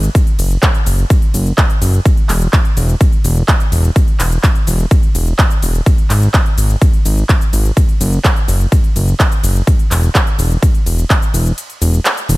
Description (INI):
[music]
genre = EDM, festival progressive house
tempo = 126 BPM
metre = 4/4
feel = straight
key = unclear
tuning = A4 = 440 Hz
[part]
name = fat analog bass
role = bass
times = 0.0-12.4 s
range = E1 to G#1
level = -13 LUFS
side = equal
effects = sidechain pumping
[part]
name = big-room dance drum kit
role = drums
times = 0.0-12.4 s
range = handclaps, hi-hat, ride cymbal, shaker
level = -19 LUFS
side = equal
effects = overdrive, studio reverb
[part]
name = electronic kick drum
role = drums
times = 0.1-11.2 s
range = none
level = -11 LUFS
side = equal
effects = overdrive, studio reverb
[sound]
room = little or no reverb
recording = none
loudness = -11 LUFS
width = side -20 dB against mid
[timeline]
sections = 0.0-12.4 A section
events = kick drops out 11.6-12.4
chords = none